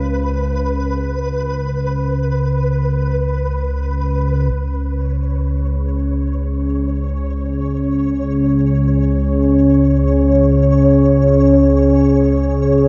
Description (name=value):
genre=ambient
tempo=free time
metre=none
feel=none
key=unclear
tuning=A4 = 440 Hz
part: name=analog drone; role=drone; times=0.0-12.9 s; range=C#2 to C#3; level=-19 LUFS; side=equal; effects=chorus
part: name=flickering grainy texture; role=texture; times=0.0-12.9 s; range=B4 to C#5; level=-29 LUFS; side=equal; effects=built-in reverb
part: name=dark analog pad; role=sustained chords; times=4.5-12.9 s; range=C#4 to C#5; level=-18 LUFS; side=equal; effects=chorus
room=wet huge ambient reverb, RT60 8.3 s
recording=none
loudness=-16 LUFS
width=mono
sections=0.0-4.5 A section; 4.5-12.9 B section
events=fade-in on synth texture 4.5-12.9; filter sweep on synth drone 4.5-12.9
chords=0.0 Bsus2/C#; 4.5 C#5